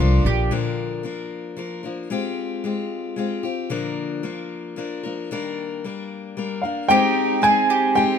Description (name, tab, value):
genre	acoustic folk duo or small band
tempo	113 BPM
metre	3/4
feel	straight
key	Bb mixolydian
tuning	A4 = 440 Hz
part	warm cello	second line	0.0-0.5, 6.9-8.2 s	C4 to Eb4	-27 LUFS	right 7 dB	none
part	picked steel-string acoustic guitar	accompaniment	0.0-8.2 s	Bb2 to Bb4	-25 LUFS	left 5 dB	none
part	mandolin	arpeggios	0.0-0.5, 6.9-8.2 s	F4 to Ab4	-25 LUFS	right 6 dB	none
part	upright bass	bass	0.0-0.5 s	Bb1 to C2	-18 LUFS	left 1 dB	none
part	warm upright piano	melody	6.6-8.2 s	F5 to Ab5	-18 LUFS	equal	none
room	light reverb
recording	minimal, uncompressed stereo recording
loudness	-21 LUFS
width	side -7 dB against mid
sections	0.5-6.9 A section; 6.9-8.2 B section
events	none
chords	0.0 Bbmaj7; 0.5 Bb; 2.1 Fmadd9/Ab; 3.7 Bb; 5.3 Ebmaj7; 6.9 Abmaj7